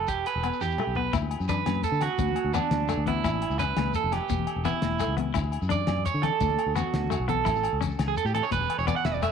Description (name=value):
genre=highlife guitar band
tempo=114 BPM (dotted quarters)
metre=12/8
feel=straight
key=D major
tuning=A4 = 440 Hz
part: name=electric guitar at the edge of break-up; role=arpeggios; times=0.0-9.3 s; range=D4 to F#5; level=-28 LUFS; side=right 10 dB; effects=tape echo
part: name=fingered electric bass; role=bass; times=0.0-9.3 s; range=E1 to D3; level=-30 LUFS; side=left 1 dB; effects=none
part: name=damped 70s drum kit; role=drums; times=0.1-9.3 s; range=hi-hat, kick drum, snare drum, toms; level=-34 LUFS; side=left 1 dB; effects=none
part: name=shekere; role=percussion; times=0.1-9.3 s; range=none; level=-35 LUFS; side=left 4 dB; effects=none
part: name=agogo bells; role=percussion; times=0.3-9.3 s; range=none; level=-37 LUFS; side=left 12 dB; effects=none
part: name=semi-hollow electric guitar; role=accompaniment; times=0.4-9.3 s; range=A3 to E4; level=-33 LUFS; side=left 12 dB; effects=wide subtle chorus
part: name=congas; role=percussion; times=1.1-9.2 s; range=none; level=-34 LUFS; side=left 14 dB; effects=none
room=moderate spring reverb, RT60 1.7 s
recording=1960s-style stereo with parts hard left and right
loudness=-24 LUFS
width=side -7 dB against mid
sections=0.0-1.1 A section; 1.1-9.3 B section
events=drum fill 0.6-1.1; clean electric guitar solo 1.1-9.3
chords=0.1 Em; 1.1 D; 3.2 A; 4.3 Em; 5.4 D; 7.5 A; 8.5 E5